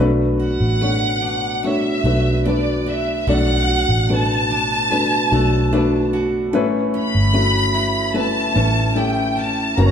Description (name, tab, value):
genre	pop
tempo	73 BPM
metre	4/4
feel	straight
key	B minor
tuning	A4 = 441 Hz
part	dark upright piano	accompaniment	0.0-9.9 s	C#3 to F#5	-20 LUFS	left 3 dB	none
part	picked steel-string acoustic guitar	arpeggios	0.0-9.9 s	F#2 to B4	-26 LUFS	right 5 dB	none
part	vintage muted fingered electric bass	bass	0.0-9.9 s	F#1 to B1	-20 LUFS	right 1 dB	none
part	warm studio violin section	melody	0.4-9.9 s	D5 to B5	-21 LUFS	equal	none
room	wet large studio reverb, RT60 1.5 s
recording	band playing live in one room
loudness	-16 LUFS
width	side -8 dB against mid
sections	0.0-9.9 A section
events	none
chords	0.0 Bm7; 6.5 Aadd9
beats	0.81 1.64 2.46 | 3.28 4.10 4.92 5.73 | 6.54 7.34 8.15 8.96 | 9.78